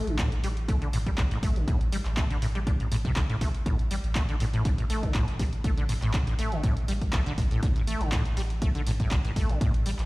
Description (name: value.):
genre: acid house.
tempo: 121 BPM.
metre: 4/4.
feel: swing 53% on 16ths.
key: unclear.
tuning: A4 = 440 Hz.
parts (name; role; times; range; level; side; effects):
acid bass, saw; riff; 0.0-9.9 s; A1 to A3; -31 LUFS; equal; tube saturation, ensemble chorus, cassette tape, sidechain pumping.
warm sub bass; bass; 0.1-10.1 s; A1; -30 LUFS; equal; sidechain pumping.
punchy analog drum machine; drums; 0.1-10.1 s; handclaps, hi-hat; -37 LUFS; equal; none.
electronic kick drum; drums; 0.2-9.7 s; none; -27 LUFS; equal; none.
room: digital ambience.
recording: played on a big sound system in a bare room, large studio reverb.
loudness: -24 LUFS.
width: side -21 dB against mid.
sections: 0.0-10.1 A section.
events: none.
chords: none.